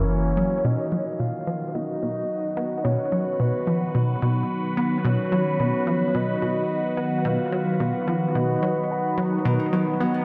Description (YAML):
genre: ambient, sequencer-driven space music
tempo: 109 BPM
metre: 4/4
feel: straight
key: unclear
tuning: A4 = 440 Hz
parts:
  - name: soft octave-layered synth lead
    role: melody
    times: 0.0-9.5 s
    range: B4 to B5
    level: -31 LUFS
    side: equal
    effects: chorus, tremolo, analog delay
  - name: evolving wavetable pad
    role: sustained chords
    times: 0.0-10.2 s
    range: D#3 to B4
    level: -28 LUFS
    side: equal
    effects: phaser, built-in reverb
  - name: plucky analog bass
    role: riff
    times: 0.0-10.2 s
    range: B2 to B3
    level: -28 LUFS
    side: equal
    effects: lush chorus, analog delay
  - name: round analog bass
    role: bass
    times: 0.0-0.6 s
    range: Gb1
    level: -28 LUFS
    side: equal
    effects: none
  - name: Celtic harp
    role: arpeggios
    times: 9.5-10.2 s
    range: D#3 to D#4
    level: -30 LUFS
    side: equal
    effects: analog delay
room: moderate plate reverb, RT60 2.5 s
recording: echo-heavy mix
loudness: -24 LUFS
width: mono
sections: 0.6-10.2 A section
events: none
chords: 0.0 Gb7; 0.6 B